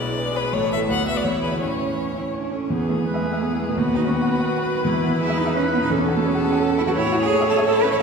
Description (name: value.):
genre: quick classical-period movement for piano quartet.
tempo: 169 BPM.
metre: 3/4.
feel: straight.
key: E major.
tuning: A4 = 440 Hz.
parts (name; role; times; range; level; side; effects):
clear violin; melody; 0.0-8.0 s; G#4 to F#5; -27 LUFS; left 4 dB; none.
rich cello; second line; 0.0-8.0 s; G#3 to C#5; -23 LUFS; right 3 dB; none.
clear concert grand piano; accompaniment; 0.0-8.0 s; A1 to B5; -23 LUFS; left 1 dB; none.
rich viola; accompaniment; 0.0-8.0 s; G#3 to C#5; -28 LUFS; right 1 dB; none.
room: wet church reverb, RT60 3.1 s.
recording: heard from further back in the room.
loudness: -19 LUFS.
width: side -5 dB against mid.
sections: 0.0-2.7 A section; 2.7-8.0 B section.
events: none.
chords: 0.0 E7/B; 0.5 A; 0.9 Bm/D; 1.2 E; 1.6 A; 2.7 E; 3.8 B/D#; 4.9 E; 5.9 F#m7/E; 7.0 A.